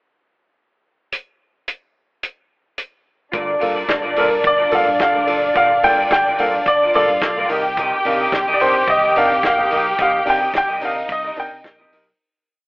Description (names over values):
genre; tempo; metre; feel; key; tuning
disco; 108 BPM; 4/4; straight; G minor; A4 = 440 Hz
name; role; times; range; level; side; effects
warm soul drum kit; drums; 1.1-12.1 s; hi-hat, kick drum, snare drum; -25 LUFS; equal; none
rich studio string section; second line; 3.3-11.9 s; D4 to G5; -20 LUFS; equal; none
electric guitar through a small old amp; accompaniment; 3.3-12.1 s; F4 to F5; -24 LUFS; equal; lush chorus
warm grand piano; accompaniment; 3.3-12.1 s; G2 to Bb4; -24 LUFS; equal; none
fingered electric bass; bass; 3.3-12.1 s; F1 to C3; -35 LUFS; equal; none
bright baby grand piano; melody; 4.2-11.9 s; Bb4 to G5; -16 LUFS; equal; none
room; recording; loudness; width
light reverb, small room ambience; telephone sound; -14 LUFS; side -37 dB against mid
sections
1.1-3.3 pickup bar; 3.3-12.2 verse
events
fade-out 10.0-12.2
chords
1.1 N.C.; 3.3 Gm7; 7.5 Cm7